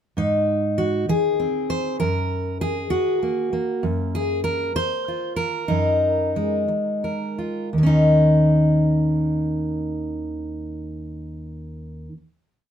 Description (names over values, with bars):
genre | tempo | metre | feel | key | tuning
folk, solo fingerstyle acoustic guitar | 56-66 BPM (dotted quarters) | 6/8 | straight | unclear | A4 = 438 Hz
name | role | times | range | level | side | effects
fingerpicked steel-string acoustic guitar | solo | 0.2-12.2 s | Eb2 to C5 | -20 LUFS | equal | none
room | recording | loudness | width
moderate studio reverb, RT60 0.5 s | minimal, uncompressed stereo recording | -19 LUFS | side -9 dB against mid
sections
0.2-7.7 A section; 7.7-12.0 final chord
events
slowing down 3.8-7.7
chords
0.2 Ab; 2.0 Gb; 3.8 Ebmadd9/Gb; 7.7 Dbsus2/Eb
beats
| 0.17 1.09 | 2.00 2.92 | 3.84 4.76 | 5.70 6.69 | 7.72 8.79 | 9.86 10.93